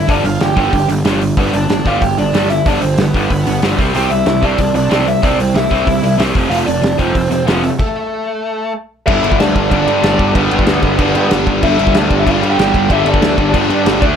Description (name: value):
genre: punk rock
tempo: 187 BPM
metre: 4/4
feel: straight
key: G mixolydian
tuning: A4 = 440 Hz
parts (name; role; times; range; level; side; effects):
- bluesy overdriven lead guitar; melody; 0.0-14.0 s; A3 to G5; -18 LUFS; equal; distortion
- cranked stack guitar; riff; 0.0-14.2 s; F2 to D4; -20 LUFS; left 12 dB; overdrive
- distorted electric guitar; riff; 0.0-14.2 s; F2 to D4; -18 LUFS; right 9 dB; distortion
- fuzz picked electric bass; bass; 0.1-14.2 s; F1 to G2; -19 LUFS; equal; overdrive
- loose indie drum kit; drums; 0.1-14.1 s; crash cymbal, hi-hat, kick drum, snare drum; -17 LUFS; equal; none
- cranked stack guitar; riff; 9.1-14.2 s; G2 to D4; -20 LUFS; equal; overdrive
room: light reverb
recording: none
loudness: -11 LUFS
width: side -8 dB against mid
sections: 0.0-9.1 A section; 9.1-14.2 B section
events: stop 7.8-9.1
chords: 0.0 G; 3.8 C; 6.4 F; 9.1 G